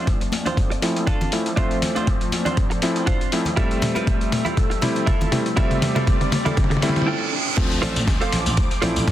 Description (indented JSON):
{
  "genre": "nu-disco, nu disco",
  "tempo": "120 BPM",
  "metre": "4/4",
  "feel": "swing 55% on 16ths",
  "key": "D minor",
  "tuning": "A4 = 441 Hz",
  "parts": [
    { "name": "warm electric grand piano", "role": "accompaniment", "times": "0.0-9.0 s", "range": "F3 to E5", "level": "-25 LUFS", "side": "left 1 dB", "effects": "sidechain pumping, low-pass filter, tape echo" },
    { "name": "lush unison pad", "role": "sustained chords", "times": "0.1-9.1 s", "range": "F3 to D6", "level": "-31 LUFS", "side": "equal", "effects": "chorus, phaser, sidechain pumping" },
    { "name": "direct-recorded clean electric guitar", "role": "riff", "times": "0.0-9.1 s", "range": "D4 to G5", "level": "-28 LUFS", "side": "right 3 dB", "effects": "analog chorus, low-pass filter, tape echo" },
    { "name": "vintage slap bass", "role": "bass", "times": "0.0-9.1 s", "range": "F1 to F2", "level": "-31 LUFS", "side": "equal", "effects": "high-pass filter" },
    { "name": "riser, reverse cymbal and downlifter", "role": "sound effects", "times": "4.7-9.1 s", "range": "none", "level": "-31 LUFS", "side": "right 3 dB", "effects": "none" },
    { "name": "dusty soul sampler-style drum kit", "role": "drums", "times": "0.1-9.1 s", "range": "crash cymbal, hi-hat, snare drum, tambourine, toms", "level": "-26 LUFS", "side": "left 1 dB", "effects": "overdrive" },
    { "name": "electronic kick drum", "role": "drums", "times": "0.1-9.1 s", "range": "none", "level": "-21 LUFS", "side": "equal", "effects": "overdrive" },
    { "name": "congas and bongos", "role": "percussion", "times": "0.3-6.9 s", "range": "none", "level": "-30 LUFS", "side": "left 3 dB", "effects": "none" }
  ],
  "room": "light reverb",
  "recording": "dense, heavily limited modern master",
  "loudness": "-18 LUFS",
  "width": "side -12 dB against mid",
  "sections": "0.0-7.6 A section; 7.6-9.1 B section",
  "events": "build-up 0.0-7.6; drum fill 0.0-7.1; filter sweep on electric grand piano 0.0-7.6; filter sweep on analog synth pad 0.0-7.6; reverse cymbal 6.6-7.6; clean electric guitar fill 6.8-7.6; break 7.1-7.6; drop 7.6-9.1",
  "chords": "0.0 Dm7; 3.6 Fmaj7; 7.6 Dm7"
}